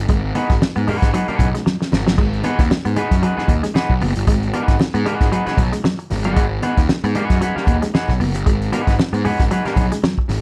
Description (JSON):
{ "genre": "funk", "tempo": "115 BPM", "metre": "4/4", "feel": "swing 56% on 16ths", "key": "G# minor", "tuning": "A4 = 440 Hz", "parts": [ { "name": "fuzz picked electric bass", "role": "bass", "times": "0.0-10.4 s", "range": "F#1 to G#2", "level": "-23 LUFS", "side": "equal", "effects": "overdrive" }, { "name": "semi-hollow electric guitar", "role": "riff", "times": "0.1-10.2 s", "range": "F#3 to B3", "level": "-26 LUFS", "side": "equal", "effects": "none" }, { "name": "warm soul drum kit", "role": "drums", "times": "0.1-10.4 s", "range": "crash cymbal, hi-hat, kick drum, snare drum", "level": "-21 LUFS", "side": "equal", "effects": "none" }, { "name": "congas", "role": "percussion", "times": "0.1-10.4 s", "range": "none", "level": "-30 LUFS", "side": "equal", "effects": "none" }, { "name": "electric guitar at the edge of break-up", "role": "accompaniment", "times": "0.4-9.9 s", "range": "D#4 to F#5", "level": "-25 LUFS", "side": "equal", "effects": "none" } ], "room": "light reverb", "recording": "dark, warm production", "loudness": "-18 LUFS", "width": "mono", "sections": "0.0-10.4 A section", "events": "drum fill 1.7-2.2", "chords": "0.0 G#m7" }